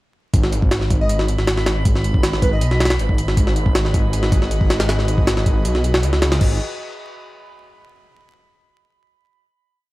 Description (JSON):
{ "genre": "drum and bass, jungle", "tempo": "158 BPM", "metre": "4/4", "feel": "straight", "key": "G# minor", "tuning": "A4 = 441 Hz", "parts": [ { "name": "detuned saw bass", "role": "bass", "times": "0.3-6.6 s", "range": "G#1 to C#2", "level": "-19 LUFS", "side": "equal", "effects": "none" }, { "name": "jungle sampler-style drum kit", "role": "drums", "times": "0.3-6.5 s", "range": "crash cymbal, hi-hat, kick drum, snare drum", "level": "-18 LUFS", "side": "equal", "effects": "none" }, { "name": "drifting glass-harmonics texture", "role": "texture", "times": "0.9-6.4 s", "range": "B5", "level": "-33 LUFS", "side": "right 3 dB", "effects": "chorus, built-in reverb" }, { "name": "plucky unison lead", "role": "melody", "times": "1.0-3.1 s", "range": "B4 to D#5", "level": "-28 LUFS", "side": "equal", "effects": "lush chorus, cassette tape, dub echo" }, { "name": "airy breathy pad", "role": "sustained chords", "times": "3.4-6.6 s", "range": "F#4 to D#5", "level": "-30 LUFS", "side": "left 1 dB", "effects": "chorus" } ], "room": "little or no reverb", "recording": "vinyl crackle", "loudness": "-15 LUFS", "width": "side -18 dB against mid", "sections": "0.3-6.4 drop; 6.4-7.9 final chord", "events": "drop 0.3-6.4", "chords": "0.3 G#m7" }